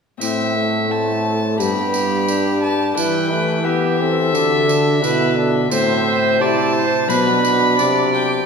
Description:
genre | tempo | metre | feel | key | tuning
classical, renaissance-style consort dance | 87 BPM | 4/4 | straight | A dorian | A4 = 439 Hz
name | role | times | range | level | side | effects
warm violin | melody | 0.2-8.5 s | E5 to B5 | -21 LUFS | left 2 dB | none
Celtic harp | accompaniment | 0.2-8.5 s | G2 to D5 | -23 LUFS | left 4 dB | none
clear trombone | accompaniment | 0.2-8.4 s | A3 to E4 | -23 LUFS | left 1 dB | none
warm trombone | bass | 0.2-8.5 s | G2 to E3 | -21 LUFS | right 2 dB | none
tambourine | percussion | 0.2-8.1 s | none | -30 LUFS | right 5 dB | none
warm viola | second line | 1.6-8.5 s | G4 to D5 | -21 LUFS | right 2 dB | none
room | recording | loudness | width
wet scoring stage reverb, RT60 1.7 s | minimal, uncompressed stereo recording | -15 LUFS | side -5 dB against mid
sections
0.2-8.5 A section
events
none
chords
0.2 Am; 1.6 G; 3.0 Em; 4.3 D; 5.7 Am; 7.1 Bm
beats
| 0.21 0.91 1.60 2.29 | 2.97 3.66 4.34 5.03 | 5.72 6.41 7.10 7.79

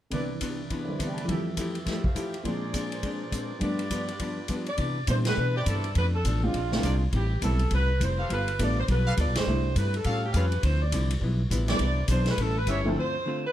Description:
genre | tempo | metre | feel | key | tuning
jazz, big band swing | 206 BPM | 4/4 | swing 61% on 8ths | C major | A4 = 440 Hz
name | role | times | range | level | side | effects
archtop guitar, miked and amplified | accompaniment | 0.1-13.5 s | G2 to A4 | -34 LUFS | left 3 dB | none
warm baby grand piano | accompaniment | 0.1-13.0 s | C2 to B5 | -32 LUFS | right 1 dB | none
bright trumpet section | stabs | 0.1-12.8 s | E4 to C6 | -37 LUFS | right 1 dB | none
swinging big-band drum kit | drums | 0.1-12.8 s | hi-hat, kick drum, ride cymbal, snare drum | -33 LUFS | equal | none
mellow saxophone section | melody | 4.7-13.5 s | F4 to D5 | -31 LUFS | right 1 dB | none
upright bass | bass | 4.8-13.0 s | F1 to C3 | -26 LUFS | equal | none
room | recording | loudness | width
light reverb | none | -24 LUFS | side -12 dB against mid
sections
0.1-4.8 A section; 4.8-13.5 B section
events
band accent 5.2, 9.3; break 13.0-13.5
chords
0.1 Cmaj9; 1.3 Fmaj9; 2.5 Bb9; 3.6 G7; 4.8 Cmaj9; 6.0 Bm7b5; 6.5 Bb9; 7.1 Am7; 8.3 G9; 9.5 C6; 10.0 A7b13; 10.6 Dm9; 11.2 G13; 11.8 Cmaj9; 12.4 A7; 13.0 Dm7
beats
| 0.12 0.41 0.70 0.99 | 1.28 1.57 1.87 2.16 | 2.45 2.74 3.03 3.33 | 3.62 3.91 4.20 4.50 | 4.79 5.08 5.37 5.67 | 5.96 6.25 6.54 6.83 | 7.13 7.42 7.71 8.00 | 8.30 8.59 8.88 9.17 | 9.46 9.76 10.05 10.34 | 10.63 10.92 11.22 11.51 | 11.80 12.09 12.38 12.67 | 12.96 13.26

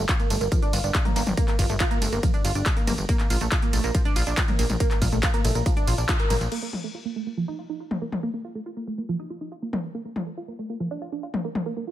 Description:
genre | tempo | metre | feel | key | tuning
uplifting trance | 140 BPM | 4/4 | straight | unclear | A4 = 440 Hz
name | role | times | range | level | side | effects
tight sequenced synth | arpeggios | 0.0-11.9 s | F3 to F4 | -29 LUFS | right 2 dB | chorus, phaser, sidechain pumping, digital delay
plucky analog bass | bass | 0.0-6.5 s | G1 to Bb1 | -26 LUFS | equal | sidechain pumping
electronic kick drum | drums | 0.1-6.2 s | none | -24 LUFS | equal | none
punchy analog drum machine | drums | 0.1-11.6 s | crash cymbal, handclaps, hi-hat, ride cymbal, tambourine, toms | -28 LUFS | left 1 dB | sidechain pumping on hats, sidechain pumping on toms, sidechain pumping on perc, sidechain pumping on cymbals
room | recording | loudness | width
light reverb | none | -22 LUFS | side -13 dB against mid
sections
0.0-6.5 A section; 6.5-11.9 B section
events
drop 0.0-6.5; band accent 6.1; filter sweep on synth arpeggio sound 6.5-11.9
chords
0.0 Gm; 3.1 Bb; 6.5 Eb5; 9.9 Fadd11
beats
0.09 0.52 0.95 | 1.37 1.80 2.23 2.66 | 3.09 3.52 3.95 4.37 | 4.80 5.23 5.66 6.09 | 6.52 6.95 7.37 7.80 | 8.23 8.66 9.09 9.52 | 9.95 10.37 10.80 11.23 | 11.66

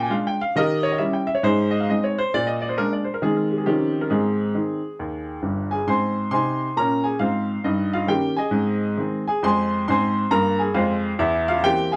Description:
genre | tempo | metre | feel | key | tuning
jazz, stride piano | 135 BPM | 4/4 | swing 64% on 8ths | Ab major | A4 = 440 Hz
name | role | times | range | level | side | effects
clear upright piano | solo | 0.0-12.0 s | G1 to C6 | -22 LUFS | equal | none
room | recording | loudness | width
moderate studio reverb, RT60 0.7 s | none | -22 LUFS | mono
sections
0.0-5.9 A section; 5.9-12.0 B section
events
none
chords
0.0 Bb7; 0.5 Eb7b9; 1.4 Ab; 2.3 Bb7; 3.2 Ab/Eb; 3.7 Eb13; 4.1 Ab; 7.6 Eb7/G; 8.5 Ab; 9.4 Fm; 11.2 C7/E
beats
0.10 | 0.54 0.99 1.43 1.88 | 2.32 2.76 3.21 3.65 | 4.10 4.54 4.98 5.43 | 5.87 6.32 6.76 7.20 | 7.65 8.09 8.53 8.98 | 9.42 9.86 10.31 10.75 | 11.19 11.64

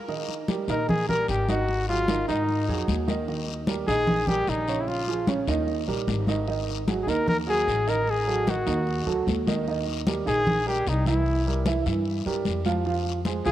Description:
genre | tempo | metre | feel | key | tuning
Afro-Cuban jazz | 150 BPM | 4/4 | straight | Eb mixolydian | A4 = 440 Hz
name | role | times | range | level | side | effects
dark baby grand piano | accompaniment | 0.1-13.5 s | Db3 to F5 | -28 LUFS | right 5 dB | cassette tape
congas | percussion | 0.1-13.5 s | none | -29 LUFS | left 1 dB | none
guiro | percussion | 0.1-13.5 s | none | -39 LUFS | left 11 dB | none
mellow trumpet | melody | 0.7-13.5 s | Eb4 to Bb4 | -26 LUFS | left 1 dB | cassette tape
upright bass | bass | 0.7-13.5 s | Ab1 to Ab2 | -29 LUFS | left 1 dB | none
room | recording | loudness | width
moderate lush hall reverb, RT60 2.7 s | home recording on cassette | -23 LUFS | side -12 dB against mid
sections
0.1-13.5 A section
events
none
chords
0.1 Eb; 1.7 Ab5; 3.3 Eb7; 4.9 Bbm7; 5.7 Eb; 6.5 Ab5; 8.1 Gbm69; 9.7 Eb6; 11.3 C7; 12.9 Fm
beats
| 0.09 0.49 0.89 1.28 | 1.68 2.08 2.48 2.88 | 3.28 3.68 4.08 4.48 | 4.88 5.28 5.67 6.08 | 6.47 6.87 7.27 7.67 | 8.07 8.47 8.87 9.27 | 9.67 10.07 10.47 10.87 | 11.27 11.66 12.06 12.46 | 12.86 13.26

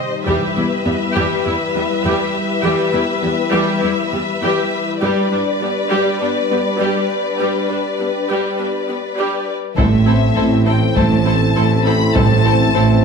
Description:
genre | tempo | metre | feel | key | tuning
cinematic, hybrid orchestral and electronic film score | 101 BPM | 4/4 | straight | A minor | A4 = 440 Hz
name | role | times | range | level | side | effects
rich symphonic violin section | second line | 0.0-12.8 s | A4 to E5 | -21 LUFS | left 4 dB | none
dark analog pad | sustained chords | 0.0-13.0 s | E3 to C5 | -22 LUFS | left 3 dB | chorus
clear studio viola section | accompaniment | 0.3-12.8 s | G3 to G4 | -22 LUFS | right 1 dB | none
glassy wavetable pluck | arpeggios | 0.3-12.9 s | E3 to A4 | -25 LUFS | right 1 dB | chorus, ping-pong delay
rich symphonic cello section | bass | 0.3-13.0 s | E2 to A2 | -22 LUFS | right 4 dB | none
solo taiko drums | drums | 0.3-1.4, 5.0-6.2, 9.8-12.7 s | none | -21 LUFS | left 1 dB | none
rich symphonic violin section | melody | 9.8-13.0 s | E5 to B5 | -21 LUFS | left 5 dB | none
warm French horn section | sustained chords | 9.8-13.0 s | A3 to C4 | -23 LUFS | left 5 dB | none
mellow tuba | bass | 9.8-13.0 s | A1 | -21 LUFS | right 4 dB | none
warm studio double bass section | bass | 9.8-13.0 s | A1 | -18 LUFS | right 2 dB | none
room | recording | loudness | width
wet recital hall reverb, RT60 1.4 s | high-pass filter | -14 LUFS | side -5 dB against mid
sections
0.0-9.8 A section; 9.8-13.0 B section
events
build-up 0.0-9.8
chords
0.3 Em; 5.0 G; 9.8 Am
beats
| 0.27 0.86 1.46 2.05 | 2.65 3.24 3.83 4.43 | 5.02 5.62 6.21 6.80 | 7.40 7.99 8.59 9.18 | 9.78 10.37 10.96 11.56 | 12.15 12.74

